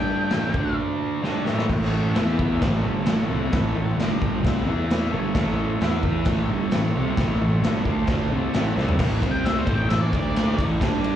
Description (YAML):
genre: garage rock duo or trio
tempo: 132 BPM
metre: 4/4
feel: straight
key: unclear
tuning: A4 = 440 Hz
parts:
  - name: octave-fuzz lead guitar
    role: melody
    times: 0.0-0.8, 9.3-10.6 s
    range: C5 to G5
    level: -28 LUFS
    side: left 2 dB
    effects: distortion
  - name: combo organ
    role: sustained chords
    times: 0.0-11.2 s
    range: C4 to A5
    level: -35 LUFS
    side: left 2 dB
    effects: none
  - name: thick fuzz guitar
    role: riff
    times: 0.0-11.2 s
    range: G2 to G4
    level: -24 LUFS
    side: right 1 dB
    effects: distortion, slapback echo
  - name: fuzz fingered electric bass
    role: bass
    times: 0.0-11.2 s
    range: G1 to G2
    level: -27 LUFS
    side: equal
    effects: overdrive
  - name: raw garage drum kit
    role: drums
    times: 0.3-11.2 s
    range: crash cymbal, hi-hat, kick drum, ride cymbal, snare drum, toms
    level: -24 LUFS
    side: equal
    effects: none
room: light reverb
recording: live gig heard through the venue's PA, cassette tape, club ambience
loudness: -20 LUFS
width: side -10 dB against mid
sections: 0.0-1.7 A section; 1.7-9.0 B section; 9.0-11.2 C section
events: transistor combo organ fill 0.8-1.7, 8.1-9.0; drum fill 1.2-1.7, 8.8; lead electric guitar solo 9.0-11.2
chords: 0.3 A5; 0.6 D5; 1.2 A; 2.2 E5; 2.6 A; 4.0 G5; 4.4 C5; 4.7 E5; 5.1 A; 5.8 E5; 6.3 A; 7.9 D5; 8.3 A; 9.0 A5; 9.2 C5; 9.7 A; 10.1 D5; 10.6 A5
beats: 0.32 0.78 1.24 | 1.70 2.16 2.62 3.07 | 3.53 3.99 4.44 4.90 | 5.36 5.81 6.27 6.72 | 7.18 7.63 8.09 8.54 | 9.00 9.45 9.91 10.37 | 10.82